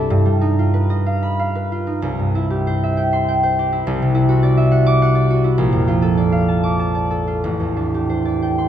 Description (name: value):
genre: classical, solo harp piece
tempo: 91-105 BPM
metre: 3/4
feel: rubato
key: unclear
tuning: A4 = 436 Hz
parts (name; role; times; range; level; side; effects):
- concert harp; solo; 0.0-8.7 s; A1 to D6; -15 LUFS; equal; none
room: wet concert hall reverb, RT60 2.5 s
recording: minimal, uncompressed stereo recording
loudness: -15 LUFS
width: side -10 dB against mid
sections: 0.0-8.7 A section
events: none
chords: 0.1 Gaug7; 2.0 C; 3.8 D9/C; 5.6 Bbmaj7; 7.4 Am7